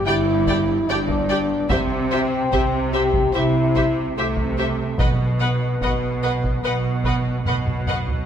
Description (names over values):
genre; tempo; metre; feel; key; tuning
cinematic, epic orchestral film score; 73 BPM; 4/4; straight; unclear; A4 = 438 Hz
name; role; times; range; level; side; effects
clear French horn section; sustained chords; 0.0-7.5 s; A3 to G4; -23 LUFS; left 3 dB; none
rich symphonic violin section; melody; 0.1-8.0 s; E5 to G5; -29 LUFS; left 1 dB; none
clear symphonic violin section; second line; 0.1-8.0 s; C5 to D#5; -32 LUFS; left 3 dB; none
rich symphonic viola section; accompaniment; 0.1-8.0 s; G4 to B4; -29 LUFS; right 1 dB; none
rich symphonic cello section; bass; 0.1-8.2 s; G2 to C3; -26 LUFS; right 3 dB; none
rich symphonic double bass section; bass; 0.1-8.2 s; G1 to C2; -26 LUFS; right 3 dB; none
taiko ensemble; drums; 0.5-8.3 s; none; -27 LUFS; equal; none
timpani; percussion; 5.0-6.2 s; B2; -27 LUFS; left 2 dB; none
room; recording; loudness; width
moderate concert hall reverb, RT60 2.1 s; none; -18 LUFS; side -9 dB against mid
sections
0.0-8.3 A section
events
drum fill 7.5-8.3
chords
0.0 G5; 1.7 C; 5.0 N.C.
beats
0.06 0.88 | 1.71 2.53 3.35 4.17 | 4.99 5.82 6.64 7.46